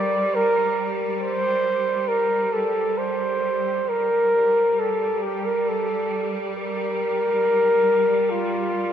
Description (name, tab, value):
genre	caucasian folk, Caucasian lament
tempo	66-71 BPM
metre	3/4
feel	rubato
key	G minor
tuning	A4 = 440 Hz
part	mellow flugelhorn	melody	0.0-8.9 s	F4 to D5	-20 LUFS	equal	none
part	bright symphonic cello section	drone	0.0-8.9 s	G3	-29 LUFS	right 1 dB	none
room	wet cathedral reverb, RT60 5.3 s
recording	recorded in a church or concert hall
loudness	-20 LUFS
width	side -9 dB against mid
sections	0.0-8.9 A section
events	none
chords	none